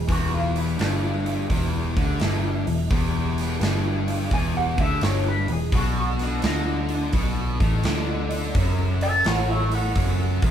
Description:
blues rock power trio and southern rock; 85 BPM; 4/4; swing 66% on 8ths; A4 = 435 Hz
lightly driven lead guitar; melody; 0.0-10.5 s; D4 to A5; -29 LUFS; right 1 dB; wah
overdriven electric guitar; riff; 0.0-10.5 s; E2 to D3; -28 LUFS; left 2 dB
vintage muted picked electric bass; bass; 0.0-10.5 s; E1 to D2; -25 LUFS; equal
overdriven tonewheel organ; sustained chords; 0.1-10.5 s; D#4 to D#5; -37 LUFS; right 3 dB; slow rotary speaker
big rock drum kit; drums; 0.1-10.5 s; hi-hat, kick drum, snare drum; -26 LUFS; equal
light reverb; band playing live in one room; -21 LUFS; side -9 dB against mid
0.0-10.5 A section
lead electric guitar solo 0.0-10.5
0.0 E7#9; 5.7 B7#9; 8.6 F#7#9

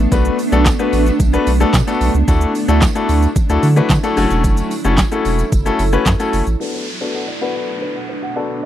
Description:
dance-pop; 111 BPM; 4/4; straight; B minor; A4 = 440 Hz
granular cloud pad; sustained chords; 0.0-8.7 s; B2 to A4; -22 LUFS; right 3 dB; built-in reverb, sidechain pumping, low-pass filter
saturated sub bass; bass; 0.0-6.6 s; E1 to D3; -15 LUFS; equal; sidechain pumping
clear concert grand piano; accompaniment; 0.1-8.6 s; A3 to B4; -18 LUFS; left 4 dB; sidechain pumping, low-pass filter
smooth R&B drum kit; drums; 0.1-6.6 s; handclaps, hi-hat, kick drum, shaker, snare drum; -17 LUFS; right 1 dB; overdrive
tambourine; percussion; 0.1-6.6 s; -35 LUFS; right 10 dB
felt-muted upright piano; arpeggios; 6.6-8.7 s; B3 to F#5; -29 LUFS; right 5 dB; sidechain pumping, low-pass filter, tape echo
downlifter; sound effects; 6.6-8.7 s; -28 LUFS; right 1 dB
little or no reverb; dry, close 1970s-style studio recording; -13 LUFS; side -12 dB against mid
0.0-6.6 A section; 6.6-8.7 B section
drop 0.0-6.6
0.0 Bm7; 2.3 Dadd9; 4.2 F#m7; 6.6 Bm7

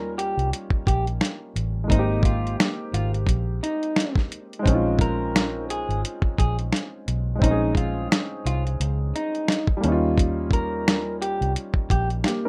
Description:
lo-fi hip hop; 87 BPM; 4/4; swing 56% on 16ths; A4 = 440 Hz
electric guitar through a small old amp; melody; 0.0-12.1 s; Eb4 to Bb4; -31 LUFS; equal
warm upright piano; accompaniment; 0.0-12.5 s; G3 to Bb4; -30 LUFS; equal; cassette tape
vintage muted fingered electric bass; bass; 0.0-12.2 s; Ab1 to Eb2; -28 LUFS; equal
dusty soul sampler-style drum kit; drums; 0.2-12.4 s; finger snaps, hi-hat, kick drum, snare drum; -24 LUFS; equal
light reverb; rough home demo mix; -24 LUFS; mono
0.0-12.5 A section
0.0 Eb7; 1.9 Abmaj7; 4.7 Bbm11; 9.8 Eb7

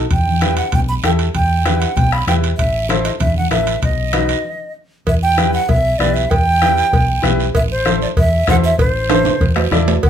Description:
latin, cumbia; 193 BPM; 4/4; straight; E harmonic minor, E minor from 5.1 s; A4 = 443 Hz
hollow-body short-scale fingered electric bass; bass; 0.0-10.1 s; A1 to E2; -18 LUFS; equal
breathy jazz flute; melody; 0.1-10.1 s; C5 to B5; -18 LUFS; right 2 dB
bombo; percussion; 0.1-10.1 s; -19 LUFS; left 2 dB
congas; percussion; 0.1-10.1 s; -24 LUFS; left 3 dB
guiro; percussion; 0.1-10.1 s; -28 LUFS; right 8 dB
timbales and cowbell; percussion; 0.1-10.1 s; -22 LUFS; right 6 dB
clear upright piano; accompaniment; 0.4-9.9 s; D#4 to D5; -20 LUFS; left 1 dB
light reverb; minimal, uncompressed stereo recording; -13 LUFS; side -9 dB against mid
0.0-5.1 A section; 5.1-10.1 B section
stop 4.4-5.1; drum fill 9.1-10.0
0.1 Em; 2.6 Am; 3.8 B; 5.1 Em; 7.6 Am

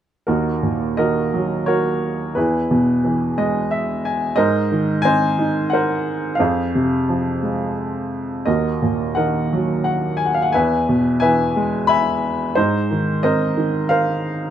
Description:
classical, lyrical solo piano; 89 BPM; 3/4; rubato; Eb dorian; A4 = 439 Hz
clear upright piano; solo; 0.3-14.5 s; Eb2 to B5; -17 LUFS; equal
light reverb; dark, warm production; -17 LUFS; side -10 dB against mid
0.3-14.5 A section
upright piano fill 3.0-4.4
0.3 Ebm; 2.4 E; 4.4 Abadd9; 6.4 Fm; 8.5 Ebm; 10.5 E; 12.6 Abadd9

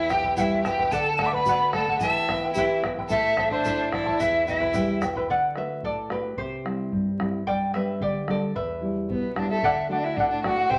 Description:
andean folk, Andean ensemble; 110 BPM; 2/4; straight; A4 = 440 Hz
hollow quena; melody; 0.0-5.0, 9.1-10.8 s; B4 to D6; -28 LUFS; equal
bright violin; second line; 0.0-5.0, 9.1-10.8 s; B3 to E5; -31 LUFS; equal
charango; accompaniment; 0.0-10.8 s; E4 to A5; -30 LUFS; equal
nylon-string guitar; accompaniment; 0.0-10.8 s; E2 to G4; -32 LUFS; equal
bombo; percussion; 0.1-10.8 s; -37 LUFS; equal
egg shaker; percussion; 0.1-5.1 s; -49 LUFS; equal
wet large studio reverb, RT60 0.9 s; vinyl crackle; -25 LUFS; mono
0.0-5.3 A section; 5.3-9.6 B section; 9.6-10.8 C section
charango solo 5.3-9.6
0.0 Em; 0.9 D; 2.0 Em; 3.1 Am; 4.2 Em; 5.3 D; 6.4 C; 7.5 G; 8.5 Em; 9.6 D

